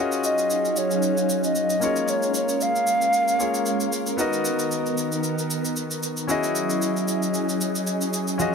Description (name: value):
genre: amapiano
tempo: 114 BPM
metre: 4/4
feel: swing 55% on 16ths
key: unclear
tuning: A4 = 440 Hz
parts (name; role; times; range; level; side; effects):
- warm concert grand piano; accompaniment; 0.0-8.5 s; Bb3 to Eb5; -27 LUFS; left 3 dB; none
- soft string machine; sustained chords; 0.0-8.5 s; D#3 to F5; -26 LUFS; right 1 dB; phaser, ensemble chorus
- shaker; drums; 0.1-8.5 s; none; -31 LUFS; right 1 dB; none
- mellow hollow silver concert flute; melody; 0.3-3.9 s; Db5 to F5; -23 LUFS; equal; digital delay
- congas; percussion; 8.4-8.5 s; none; -27 LUFS; right 8 dB; none
room: moderate lush hall reverb, RT60 1.9 s, small room reverb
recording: none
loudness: -21 LUFS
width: side -6 dB against mid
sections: 0.0-8.5 A section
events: none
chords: 0.0 Ebm11; 1.8 Bbm7; 4.2 Bmaj7; 6.3 Emaj13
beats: 0.50 1.03 1.55 | 2.08 2.61 3.13 3.66 | 4.19 4.71 5.24 5.76 | 6.29 6.82 7.34 7.87 | 8.40